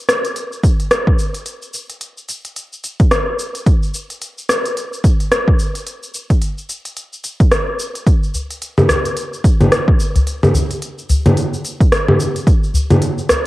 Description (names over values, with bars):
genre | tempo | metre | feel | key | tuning
downtempo | 109 BPM | 4/4 | swing 59% on 16ths | none | none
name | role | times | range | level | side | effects
organic electronic drum kit | drums | 0.1-13.4 s | cabasa, congas, hi-hat, rim click | -16 LUFS | equal | cassette tape
electronic kick drum | drums | 0.6-12.6 s | none | -13 LUFS | equal | overdrive, cassette tape
udu | percussion | 8.3-13.4 s | none | -17 LUFS | left 1 dB | none
room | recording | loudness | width
moderate spring reverb, RT60 2.0 s | home recording on cassette | -13 LUFS | side -17 dB against mid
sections
0.0-13.5 A section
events
none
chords
none